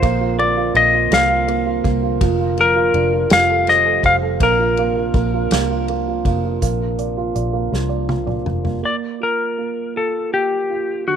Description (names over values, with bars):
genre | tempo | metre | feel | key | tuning
six-eight pop ballad | 54 BPM (dotted quarters) | 6/8 | straight | Bb major | A4 = 442 Hz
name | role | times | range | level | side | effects
clean lap steel guitar | melody | 0.0-11.2 s | F#4 to F5 | -17 LUFS | left 3 dB | none
dark upright piano | accompaniment | 0.0-11.2 s | D3 to D5 | -22 LUFS | right 13 dB | none
tonewheel organ | sustained chords | 0.0-8.8 s | C3 to Bb4 | -27 LUFS | left 12 dB | stopped rotary speaker
vintage muted fingered electric bass | bass | 0.0-8.8 s | F1 to C2 | -23 LUFS | equal | none
unplugged drum kit | drums | 0.0-8.8 s | hi-hat, kick drum, ride cymbal, snare drum, toms | -20 LUFS | equal | none
room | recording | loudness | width
moderate spring reverb, RT60 2.2 s | 1960s-style stereo with parts hard left and right | -15 LUFS | side -8 dB against mid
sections
0.0-6.6 A section; 6.6-8.8 B section; 8.8-11.2 C section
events
drum fill 7.7-8.8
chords
0.0 Bbadd9; 2.2 Bb/F; 3.3 Fadd9; 4.4 Bbadd9; 8.8 Bb5